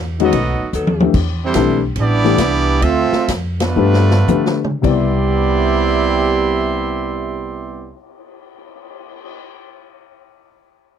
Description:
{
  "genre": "jazz, big band swing",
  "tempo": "104-148 BPM",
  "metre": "4/4",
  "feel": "swing 66% on 8ths",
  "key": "C major",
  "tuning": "A4 = 440 Hz",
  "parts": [
    { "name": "upright bass", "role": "bass", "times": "0.0-7.9 s", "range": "A1 to D3", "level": "-19 LUFS", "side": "equal", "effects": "none" },
    { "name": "bright trumpet section", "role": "melody", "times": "0.2-8.0 s", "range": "G3 to C6", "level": "-20 LUFS", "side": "right 2 dB", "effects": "none" },
    { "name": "clear trombone section", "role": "second line", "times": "0.2-7.9 s", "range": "C3 to F4", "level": "-20 LUFS", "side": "right 8 dB", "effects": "none" },
    { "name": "warm baby grand piano", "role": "accompaniment", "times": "0.2-9.1 s", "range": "C3 to G7", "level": "-18 LUFS", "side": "left 11 dB", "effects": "none" },
    { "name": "swinging big-band drum kit", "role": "drums", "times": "0.2-9.3 s", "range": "crash cymbal, cymbal swell, hi-hat, kick drum, ride cymbal, snare drum, toms", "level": "-21 LUFS", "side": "left 1 dB", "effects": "none" },
    { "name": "warm saxophone section", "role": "sustained chords", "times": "0.7-1.1 s", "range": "F#3 to A4", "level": "-23 LUFS", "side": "left 3 dB", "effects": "none" }
  ],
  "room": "little or no reverb",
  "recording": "dry, close 1970s-style studio recording",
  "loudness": "-14 LUFS",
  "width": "side -8 dB against mid",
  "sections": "0.0-1.1 A section; 1.1-4.8 B section; 4.8-9.5 C section",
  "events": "drum fill 0.7-1.1, 3.8-4.8; slowing down 1.1-4.8; band accent 3.5",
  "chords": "0.3 B7; 1.1 Em7; 2.0 A9sus4; 2.8 Dm9; 3.8 G9; 4.8 Cmaj9"
}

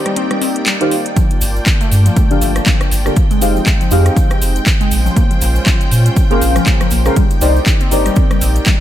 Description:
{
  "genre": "deep house",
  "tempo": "120 BPM",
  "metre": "4/4",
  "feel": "swing 57% on 16ths",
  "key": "unclear",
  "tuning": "A4 = 439 Hz",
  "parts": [
    { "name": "warm analog pad", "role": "sustained chords", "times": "0.0-8.8 s", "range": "Ab3 to A5", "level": "-24 LUFS", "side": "right 2 dB", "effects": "chorus, sidechain pumping" },
    { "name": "deep mellow chord stab", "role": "stabs", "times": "0.0-8.8 s", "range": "Db4 to F5", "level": "-19 LUFS", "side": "left 1 dB", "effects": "chorus, phaser, sidechain pumping, ping-pong delay" },
    { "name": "string machine, violins", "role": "texture", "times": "0.0-8.8 s", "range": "G5", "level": "-27 LUFS", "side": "equal", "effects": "ensemble chorus, sidechain pumping" },
    { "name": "warbly dusty pluck", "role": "arpeggios", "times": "0.1-8.7 s", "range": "F3 to C4", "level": "-22 LUFS", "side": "left 2 dB", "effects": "chorus, phaser, sidechain pumping, dub echo" },
    { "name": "house drum kit", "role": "drums", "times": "0.1-8.8 s", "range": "handclaps, hi-hat, rim click", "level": "-20 LUFS", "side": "equal", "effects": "overdrive" },
    { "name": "electronic kick drum", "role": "drums", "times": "1.2-8.8 s", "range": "none", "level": "-14 LUFS", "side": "equal", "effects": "overdrive" },
    { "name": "cabasa", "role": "percussion", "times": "1.2-8.8 s", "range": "none", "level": "-28 LUFS", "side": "right 2 dB", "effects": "none" },
    { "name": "warm sub bass", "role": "bass", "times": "1.4-8.6 s", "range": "F1 to Bb2", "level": "-14 LUFS", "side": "equal", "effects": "sidechain pumping" }
  ],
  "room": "little or no reverb",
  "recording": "none",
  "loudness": "-11 LUFS",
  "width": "side -12 dB against mid",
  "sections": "0.0-8.8 A section",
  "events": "break 0.0-1.2",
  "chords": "0.0 Cm9; 1.2 Gm9; 3.2 Fm9; 4.9 Bbm9; 7.2 Cm9"
}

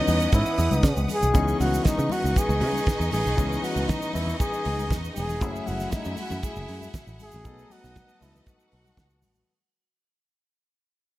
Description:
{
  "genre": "disco",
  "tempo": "118 BPM",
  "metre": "4/4",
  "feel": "straight",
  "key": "C# minor",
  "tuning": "A4 = 440 Hz",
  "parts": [
    { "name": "breathy flugelhorn", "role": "melody", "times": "0.0-9.2 s", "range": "D#4 to G#4", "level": "-28 LUFS", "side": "equal", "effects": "slapback echo" },
    { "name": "warm studio violin section", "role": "second line", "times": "0.0-9.5 s", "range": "C#4 to F#5", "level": "-35 LUFS", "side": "right 1 dB", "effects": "none" },
    { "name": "warm grand piano", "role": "accompaniment", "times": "0.0-9.5 s", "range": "E3 to D#5", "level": "-33 LUFS", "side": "left 4 dB", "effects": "none" },
    { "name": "clear studio string section", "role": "sustained chords", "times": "0.0-9.5 s", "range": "A3 to D#6", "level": "-36 LUFS", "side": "equal", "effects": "none" },
    { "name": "picked electric bass", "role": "bass", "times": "0.1-9.4 s", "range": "E1 to C#3", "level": "-26 LUFS", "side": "equal", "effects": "none" },
    { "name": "damped 70s drum kit", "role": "drums", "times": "0.1-9.3 s", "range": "hi-hat, kick drum, snare drum", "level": "-27 LUFS", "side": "right 1 dB", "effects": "none" },
    { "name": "congas", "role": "percussion", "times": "0.1-9.5 s", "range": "none", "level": "-36 LUFS", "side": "left 5 dB", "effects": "none" },
    { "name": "egg shaker", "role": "percussion", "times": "0.1-9.5 s", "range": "none", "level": "-42 LUFS", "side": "right 6 dB", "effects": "none" }
  ],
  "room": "light reverb, small room reverb",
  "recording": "none",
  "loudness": "-22 LUFS",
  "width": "side -16 dB against mid",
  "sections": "0.0-1.3 A section; 1.3-9.5 B section",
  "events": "fade-out 1.3-9.5",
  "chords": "0.0 C#m11; 1.3 C#m9; 5.4 F#m9; 7.4 B7"
}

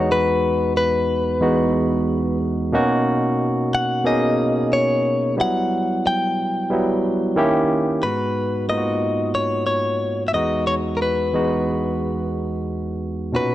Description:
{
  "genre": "soul",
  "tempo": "91 BPM",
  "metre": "4/4",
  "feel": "straight",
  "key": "unclear",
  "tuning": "A4 = 440 Hz",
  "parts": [
    { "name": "direct-recorded clean electric guitar", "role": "melody", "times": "0.0-13.5 s", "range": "A#4 to G5", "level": "-22 LUFS", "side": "left 2 dB", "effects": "none" },
    { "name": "barky tine electric piano", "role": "accompaniment", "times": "0.0-13.5 s", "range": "E2 to G#4", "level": "-20 LUFS", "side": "right 1 dB", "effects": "none" }
  ],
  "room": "light reverb",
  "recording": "none",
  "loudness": "-18 LUFS",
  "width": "side -14 dB against mid",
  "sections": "0.0-8.0 A section; 8.0-13.5 B section",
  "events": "none",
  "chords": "0.0 Emaj9; 2.7 Bmaj9; 5.4 Emadd9; 7.4 D#7b9; 8.0 G#m9; 10.3 Emaj9"
}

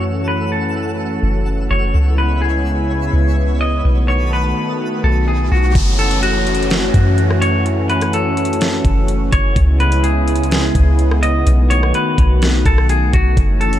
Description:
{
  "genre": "hip hop, atmospheric cloud-rap",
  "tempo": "126 BPM",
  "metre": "4/4",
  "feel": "half-time",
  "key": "F# dorian",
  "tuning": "A4 = 439 Hz",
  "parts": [
    { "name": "clean electric guitar", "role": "melody", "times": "0.0-13.8 s", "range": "F#4 to D#5", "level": "-21 LUFS", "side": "left 2 dB", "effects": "low-pass filter, ping-pong delay" },
    { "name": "warm analog pad", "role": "sustained chords", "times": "0.0-13.8 s", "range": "C#3 to F#4", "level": "-20 LUFS", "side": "equal", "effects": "wide subtle chorus, sidechain pumping, low-pass filter" },
    { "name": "soft 808-style bass", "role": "bass", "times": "0.0-13.8 s", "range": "F#1 to F#2", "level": "-15 LUFS", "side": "equal", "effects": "none" },
    { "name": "twinkling granular texture", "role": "texture", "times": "0.0-5.7, 13.7-13.8 s", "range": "A4 to E6", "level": "-32 LUFS", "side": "right 1 dB", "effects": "built-in reverb" },
    { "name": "riser and downlifter", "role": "sound effects", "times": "5.0-9.6 s", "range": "none", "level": "-27 LUFS", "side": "equal", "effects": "none" },
    { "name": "smooth R&B drum kit", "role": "drums", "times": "5.8-13.8 s", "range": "hi-hat, kick drum, rim click, snare drum", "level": "-18 LUFS", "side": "equal", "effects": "none" }
  ],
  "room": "little or no reverb",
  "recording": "none",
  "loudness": "-13 LUFS",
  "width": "side -12 dB against mid",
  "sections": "0.0-5.8 A section; 5.8-13.8 B section",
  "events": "riser 5.0-5.8",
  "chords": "0.0 F#m7; 1.9 C#m7; 3.8 B7; 5.8 F#m7; 9.6 C#m7; 11.5 B7"
}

